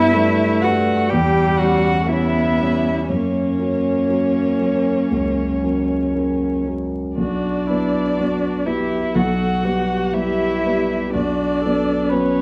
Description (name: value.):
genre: classical, slow romantic movement for piano quartet.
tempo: 58-64 BPM.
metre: 4/4.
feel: rubato.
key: B minor.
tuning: A4 = 437 Hz.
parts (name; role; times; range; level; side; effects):
muted violin; melody; 0.0-12.4 s; C#5 to G5; -30 LUFS; equal; none.
muted cello; second line; 0.0-12.4 s; C#4 to G4; -23 LUFS; equal; none.
dark grand piano; accompaniment; 0.0-12.4 s; B1 to C#5; -23 LUFS; equal; none.
muted viola; accompaniment; 0.0-12.4 s; G3 to B4; -26 LUFS; equal; none.
room: moderate recital hall reverb, RT60 1.4 s.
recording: close, detailed microphones, vinyl crackle.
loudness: -19 LUFS.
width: mono.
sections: 0.0-12.4 A section.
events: none.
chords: 0.0 G; 1.1 C#dim/E; 3.1 F#; 7.2 Bm; 9.2 Em/B; 11.1 Bm.